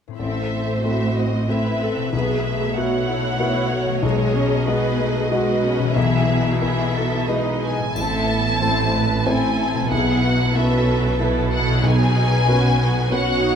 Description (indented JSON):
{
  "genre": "cinematic, emotional film score for orchestra",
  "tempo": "93 BPM",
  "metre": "3/4",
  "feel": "rubato",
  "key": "unclear",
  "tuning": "A4 = 440 Hz",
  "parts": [
    { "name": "concert harp", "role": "arpeggios", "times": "0.1-13.6 s", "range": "A2 to B5", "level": "-27 LUFS", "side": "left 8 dB", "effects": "none" },
    { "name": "dark symphonic violin section", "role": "second line", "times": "0.2-13.6 s", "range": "F#4 to F#5", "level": "-25 LUFS", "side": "left 1 dB", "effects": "none" },
    { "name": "clear grand piano", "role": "accompaniment", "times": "0.2-13.6 s", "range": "A1 to E5", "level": "-24 LUFS", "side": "left 2 dB", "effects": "none" },
    { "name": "warm symphonic viola section", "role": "accompaniment", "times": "0.2-13.6 s", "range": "G#3 to A4", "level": "-25 LUFS", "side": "right 2 dB", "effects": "none" },
    { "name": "warm symphonic cello section", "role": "bass", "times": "0.2-13.6 s", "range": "A2 to B2", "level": "-26 LUFS", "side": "right 4 dB", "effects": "none" },
    { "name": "rich symphonic violin section", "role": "melody", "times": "7.6-13.6 s", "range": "E5 to A5", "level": "-23 LUFS", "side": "left 2 dB", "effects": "none" },
    { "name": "warm symphonic double bass section", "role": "bass", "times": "8.0-13.6 s", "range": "A1 to B1", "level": "-24 LUFS", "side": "right 4 dB", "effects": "none" },
    { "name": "triangle", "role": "percussion", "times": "8.0-9.2 s", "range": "none", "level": "-43 LUFS", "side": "left 5 dB", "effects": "none" }
  ],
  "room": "moderate scoring stage reverb, RT60 2.0 s",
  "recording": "close, detailed microphones",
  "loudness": "-17 LUFS",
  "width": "side -7 dB against mid",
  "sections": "0.2-8.0 A section; 8.0-13.6 B section",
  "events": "none",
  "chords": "0.2 Amadd9; 2.1 Bsus4; 4.0 G#m7/B; 6.0 Emaj7/B; 8.0 Amadd9; 9.9 Bsus4; 11.8 G#m7/B",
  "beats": "| 0.19 0.84 1.49 | 2.13 2.77 3.40 | 4.03 4.68 5.32 | 5.96 6.62 7.29 | 7.96 8.62 9.27 | 9.91 10.56 11.20 | 11.85 12.48 13.12"
}